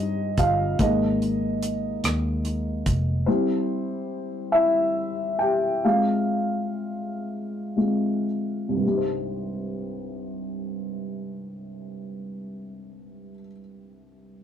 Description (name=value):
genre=six-eight pop ballad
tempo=36-48 BPM (dotted quarters)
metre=6/8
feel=straight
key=C minor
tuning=A4 = 441 Hz
part: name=dark upright piano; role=accompaniment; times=0.0-14.4 s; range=C2 to G5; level=-24 LUFS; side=left 1 dB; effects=none
part: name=vintage muted fingered electric bass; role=bass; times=0.0-3.2 s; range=F1 to G2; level=-27 LUFS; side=equal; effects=none
part: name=damped 70s drum kit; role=drums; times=0.4-3.0 s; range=hi-hat, kick drum, rim click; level=-25 LUFS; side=equal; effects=none
room=moderate studio ambience, RT60 0.5 s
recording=rough rehearsal-room recording, warm saturation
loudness=-23 LUFS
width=side -9 dB against mid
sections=0.0-8.8 A section; 8.8-12.1 B section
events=upright piano solo 0.0-8.8; slowing down 3.3-8.8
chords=0.0 Cm; 0.8 Absus2; 3.3 C/G; 5.8 Fm/Ab; 8.8 Cm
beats=| 0.79 2.03 | 3.27 4.52 | 5.84 7.26 | 8.83 10.49